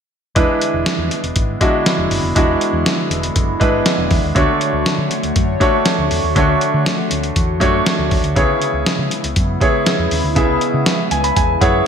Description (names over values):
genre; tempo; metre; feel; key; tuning
1980s-style pop; 120 BPM; 4/4; straight; E mixolydian; A4 = 440 Hz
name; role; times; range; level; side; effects
bright concert grand piano; accompaniment; 0.4-11.9 s; C#3 to B5; -17 LUFS; right 1 dB; none
phased analog pad; sustained chords; 0.4-11.9 s; C#3 to C#5; -23 LUFS; left 1 dB; phaser, chorus
hollow-body short-scale fingered electric bass; bass; 0.4-11.8 s; E1 to D3; -21 LUFS; equal; none
lo-fi sampler-style drum kit; drums; 0.4-11.7 s; hi-hat, kick drum, snare drum; -18 LUFS; equal; gated reverb
room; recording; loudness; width
moderate plate reverb, RT60 1.8 s, digital ambience; bright 1980s-style digital production; -14 LUFS; side -7 dB against mid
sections
0.4-11.9 A section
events
grand piano fill 10.9-11.9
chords
0.4 E7; 4.4 Dmaj7; 8.4 C#m7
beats
| 0.36 0.86 1.36 1.86 | 2.36 2.86 3.36 3.86 | 4.36 4.86 5.36 5.86 | 6.36 6.86 7.36 7.86 | 8.36 8.86 9.36 9.86 | 10.36 10.86 11.36 11.86